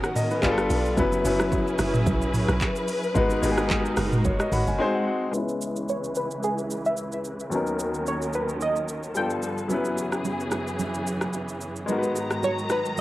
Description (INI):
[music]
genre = amapiano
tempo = 110 BPM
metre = 4/4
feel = swing 55% on 16ths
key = unclear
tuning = A4 = 440 Hz
[part]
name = clear baby grand piano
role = accompaniment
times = 0.0-13.0 s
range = D#2 to B5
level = -27 LUFS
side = left 2 dB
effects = low-pass filter, cassette tape
[part]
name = warm studio string section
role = sustained chords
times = 0.0-13.0 s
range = C#2 to A#5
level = -29 LUFS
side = equal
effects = low-pass filter, cassette tape
[part]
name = afro-pop drum kit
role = drums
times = 0.0-13.0 s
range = handclaps, hi-hat, kick drum, rim click, shaker, toms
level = -28 LUFS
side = right 1 dB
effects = cassette tape
[part]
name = bongos and congas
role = percussion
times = 0.3-4.8, 9.7-13.0 s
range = none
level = -33 LUFS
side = right 3 dB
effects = none
[part]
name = deep log drum bass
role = bass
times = 0.4-4.8 s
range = F#1 to B1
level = -28 LUFS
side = equal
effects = none
[part]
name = analog pluck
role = melody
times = 5.9-13.0 s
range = G#4 to G5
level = -28 LUFS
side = right 1 dB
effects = chorus, low-pass filter, cassette tape, tape echo
[sound]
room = light reverb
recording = home recording on cassette, faint mains hum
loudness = -23 LUFS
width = side -16 dB against mid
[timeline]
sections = 0.0-5.3 A section; 5.3-13.0 B section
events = drop 0.0-5.3; grand piano fill 4.2-5.3; silent gap 4.8-5.3; filter sweep 5.3-13.0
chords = 0.4 G9; 1.0 F#7sus4; 3.2 G#m7; 4.8 G#7; 5.3 C#m7; 7.5 Bmaj9/D#; 9.2 G9; 9.7 F#7sus4; 11.9 G#m7